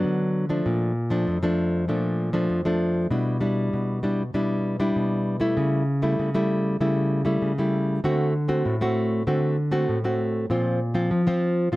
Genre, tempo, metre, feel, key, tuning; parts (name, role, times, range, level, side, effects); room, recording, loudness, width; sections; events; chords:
samba; 98 BPM; 4/4; straight; A4 = 441 Hz
nylon-string guitar; solo; 0.0-11.8 s; F2 to F#4; -21 LUFS; equal
little or no reverb; close, detailed microphones; -21 LUFS; side -18 dB against mid
0.7-11.8 A section
0.0 Gmaj7 (rootless); 0.7 Bbmaj7; 3.1 Em7/B; 5.6 A7/C#; 8.0 D7; 10.5 Bbsus2